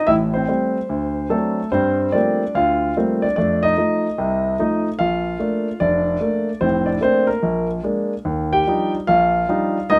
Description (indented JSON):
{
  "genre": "solo jazz",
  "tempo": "147 BPM",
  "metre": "4/4",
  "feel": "swing 65% on 8ths, rubato",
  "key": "Bb major",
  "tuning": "A4 = 439 Hz",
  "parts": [
    { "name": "warm concert grand piano", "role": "solo", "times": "0.0-10.0 s", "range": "F1 to G5", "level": "-19 LUFS", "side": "equal", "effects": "none" }
  ],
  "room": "light reverb",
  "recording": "none",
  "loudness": "-20 LUFS",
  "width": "mono",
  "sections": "0.0-8.3 A section; 8.3-10.0 B section",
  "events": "none",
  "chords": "0.1 Am7; 0.9 D7; 1.7 Gm11; 3.4 F7; 5.0 Bbmaj7; 7.4 Bb7; 8.3 Ebmaj9"
}